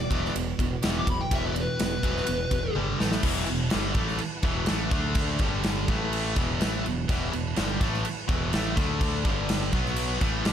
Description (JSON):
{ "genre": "hard rock", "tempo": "124 BPM", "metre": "4/4", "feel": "straight", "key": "unclear", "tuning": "A4 = 440 Hz", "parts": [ { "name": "dark smooth lead guitar", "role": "melody", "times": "0.0-2.8 s", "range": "B4 to D6", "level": "-32 LUFS", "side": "left 2 dB", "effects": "overdrive, digital delay" }, { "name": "tonewheel organ", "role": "sustained chords", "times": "0.0-10.5 s", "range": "E3 to F#5", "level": "-41 LUFS", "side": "right 1 dB", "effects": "none" }, { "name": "distorted electric guitar", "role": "riff", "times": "0.0-10.5 s", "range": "E2 to D4", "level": "-32 LUFS", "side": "left 11 dB", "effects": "overdrive" }, { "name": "scooped high-gain guitar", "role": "riff", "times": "0.0-10.5 s", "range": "E2 to D4", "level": "-32 LUFS", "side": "right 10 dB", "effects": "distortion" }, { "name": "growling fingered electric bass", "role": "bass", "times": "0.0-10.5 s", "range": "E1 to D2", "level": "-31 LUFS", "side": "equal", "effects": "overdrive" }, { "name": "big rock drum kit", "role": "drums", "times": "0.1-10.5 s", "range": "crash cymbal, kick drum, ride cymbal, snare drum, toms", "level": "-28 LUFS", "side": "equal", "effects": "none" }, { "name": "tight distorted guitar", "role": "riff", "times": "3.3-10.5 s", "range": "E2 to D4", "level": "-36 LUFS", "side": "left 1 dB", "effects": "distortion" } ], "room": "light reverb", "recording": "none", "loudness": "-24 LUFS", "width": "side -9 dB against mid", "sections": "0.0-3.2 A section; 3.2-10.5 B section", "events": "lead electric guitar solo 0.0-3.2; drum fill 2.8-3.2", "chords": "0.0 E5; 2.8 G5; 3.0 A5; 3.2 E5; 4.9 D5; 5.4 G5; 5.9 A5; 6.4 E5; 8.8 D5; 9.3 G5; 9.7 B5" }